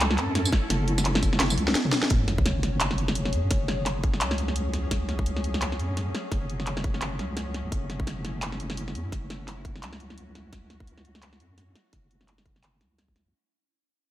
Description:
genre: half-time drum and bass.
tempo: 171 BPM.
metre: 4/4.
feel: swing 58% on 16ths, half-time.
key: F# minor.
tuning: A4 = 440 Hz.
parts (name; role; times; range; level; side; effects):
muted studio cello section; sustained chords; 0.0-13.3 s; F#3 to A4; -38 LUFS; equal; sidechain pumping.
deep soft wobble bass; bass; 0.0-13.3 s; F#1 to F#2; -29 LUFS; equal; chorus.
drum and bass drum kit; drums; 0.0-13.2 s; handclaps, hi-hat, snare drum, tambourine, toms; -28 LUFS; equal; studio reverb.
pulsing gated texture; texture; 0.0-13.4 s; C#4 to C#5; -37 LUFS; left 2 dB; chorus, built-in reverb.
electronic kick drum; drums; 0.5-13.1 s; none; -26 LUFS; equal; studio reverb.
sub drop; sound effects; 2.1-3.5 s; none; -32 LUFS; equal; none.
room: little or no reverb.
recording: none.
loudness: -24 LUFS.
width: side -14 dB against mid.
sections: 0.0-2.1 A section; 2.1-13.3 B section.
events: drop 0.0-2.1; drum fill 1.4-2.1; fade-out 2.1-13.3; impact 2.1-3.5.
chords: 0.0 F#m; 2.1 F#madd9.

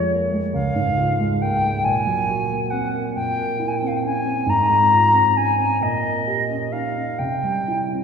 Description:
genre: classical, romantic duo for flute and grand piano.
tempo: 45 BPM (dotted quarters).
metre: 6/8.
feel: rubato.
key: F minor.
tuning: A4 = 440 Hz.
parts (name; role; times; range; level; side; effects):
silver concert flute; melody; 0.0-7.9 s; Db5 to Bb5; -20 LUFS; left 2 dB; none.
dark concert grand piano; accompaniment; 0.0-8.0 s; Db2 to G4; -23 LUFS; right 2 dB; none.
room: wet church reverb, RT60 2.7 s.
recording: minimal, uncompressed stereo recording.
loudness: -18 LUFS.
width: side -6 dB against mid.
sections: 0.0-8.0 A section.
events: none.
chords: 0.0 Db/F; 0.5 Db; 1.8 Gb/Bb; 3.1 C7/Bb; 4.5 Fm/Ab; 5.8 Gdim/Bb; 7.2 C.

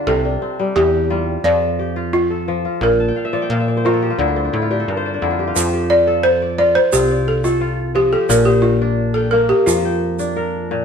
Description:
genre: west african traditional, West African string and xylophone music.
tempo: 88 BPM.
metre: 4/4.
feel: straight.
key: F major.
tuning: A4 = 437 Hz.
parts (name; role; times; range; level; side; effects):
balafon; melody; 0.0-10.8 s; F4 to D5; -16 LUFS; equal; none.
kora; arpeggios; 0.0-10.8 s; Bb2 to A5; -21 LUFS; left 2 dB; none.
plucky analog bass; bass; 0.1-10.8 s; Bb1 to Bb2; -21 LUFS; equal; none.
tube shaker; percussion; 5.6-10.3 s; none; -23 LUFS; right 5 dB; none.
room: moderate stone room reverb, RT60 1.1 s.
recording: band playing live in one room.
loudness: -14 LUFS.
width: side -6 dB against mid.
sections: 0.0-5.6 A section; 5.6-10.8 B section.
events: kora fill 3.0-5.6; balafon solo 5.6-10.8.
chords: 0.1 C; 1.4 F; 2.8 Bb5; 4.2 Dm; 5.6 F; 8.3 Bb.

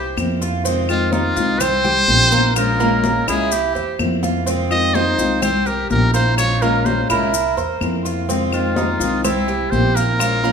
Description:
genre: latin, Cuban son and guajira.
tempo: 126 BPM.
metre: 4/4.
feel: straight.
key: unclear.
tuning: A4 = 440 Hz.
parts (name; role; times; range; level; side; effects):
trumpet with metal mute; melody; 0.0-10.5 s; E4 to Eb5; -19 LUFS; equal; none.
Cuban tres; arpeggios; 0.0-10.5 s; Bb3 to C5; -22 LUFS; right 5 dB; none.
upright bass; bass; 0.0-10.5 s; Bb1 to F2; -22 LUFS; right 1 dB; none.
picked steel-string acoustic guitar; accompaniment; 0.2-10.5 s; C3 to F4; -24 LUFS; left 5 dB; none.
claves; percussion; 0.2-10.4 s; none; -29 LUFS; left 6 dB; none.
congas; percussion; 0.2-10.5 s; none; -25 LUFS; left 3 dB; none.
maracas; percussion; 0.2-10.5 s; none; -30 LUFS; left 7 dB; none.
room: wet large studio reverb, RT60 1.3 s.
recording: minimal, uncompressed stereo recording.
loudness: -15 LUFS.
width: side -6 dB against mid.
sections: 0.0-10.5 A section.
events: none.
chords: 0.0 C7; 0.7 Fm7; 1.6 C7; 2.6 Bbm7; 3.5 C7; 4.5 Fm7; 5.4 C7; 6.4 Bbm7; 7.3 C7; 8.3 Fm7; 9.2 C7.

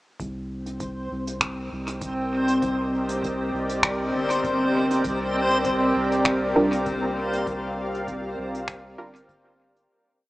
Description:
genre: ambient dub.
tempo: 99 BPM.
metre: 4/4.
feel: swing 55% on 16ths.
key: C minor.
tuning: A4 = 440 Hz.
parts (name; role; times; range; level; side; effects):
granular cloud pad; sustained chords; 1.8-9.9 s; C4 to F5; -27 LUFS; equal; built-in reverb.
soft dub sub bass; bass; 0.2-9.9 s; G1 to C2; -34 LUFS; equal; none.
electronic kick drum; drums; 0.2-9.4 s; none; -40 LUFS; equal; none.
soft brush drum kit; drums; 0.2-9.9 s; finger snaps, hi-hat; -28 LUFS; equal; dub echo.
backwards swelling texture; texture; 0.8-9.9 s; C4 to C5; -26 LUFS; equal; built-in reverb.
filtered dub chord stab; stabs; 6.6-9.1 s; G3 to Bb4; -24 LUFS; right 1 dB; chorus, dub echo.
room: moderate huge ambient reverb, RT60 4.3 s.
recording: small speaker sound.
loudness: -22 LUFS.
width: side -18 dB against mid.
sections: 0.2-9.9 groove.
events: fade-in on ambient pad 0.2-9.9; fade-out 6.7-9.9.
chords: 0.2 Cm7; 5.0 Gm7/C.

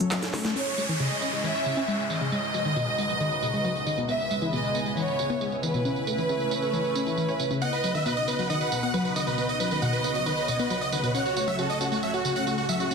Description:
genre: uplifting trance.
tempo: 136 BPM.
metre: 4/4.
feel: straight.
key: C# minor.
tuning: A4 = 438 Hz.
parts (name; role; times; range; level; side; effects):
lush unison pad; sustained chords; 0.0-12.9 s; C#3 to G#5; -33 LUFS; equal; chorus, phaser.
wide unison pluck; arpeggios; 0.0-12.9 s; B2 to C#5; -29 LUFS; left 2 dB; tape echo.
techno drum kit; drums; 0.0-12.9 s; handclaps, hi-hat, percussion blips, snare drum, tambourine; -35 LUFS; right 4 dB; overdrive, low-pass filter on hats, studio reverb, low-pass filter on snare, low-pass filter on perc.
clear studio violin section; second line; 0.6-12.9 s; F#4 to F#5; -29 LUFS; right 1 dB; ping-pong delay.
downlifter and riser; sound effects; 0.6-4.1, 12.2-12.9 s; none; -34 LUFS; equal; none.
big supersaw lead; melody; 7.6-12.9 s; F#4 to F#5; -28 LUFS; right 1 dB; tape echo.
room: moderate lush hall reverb, RT60 1.8 s.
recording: dense, heavily limited modern master.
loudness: -24 LUFS.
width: side -5 dB against mid.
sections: 0.6-12.9 A section.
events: drum fill 0.1-0.6; band accent 0.4; filter sweep on synth pluck 0.6-12.9.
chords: 0.0 F#m; 0.6 C#m; 2.3 G#m7; 4.1 E; 5.9 A/C#; 7.6 B; 11.1 F#m/C#.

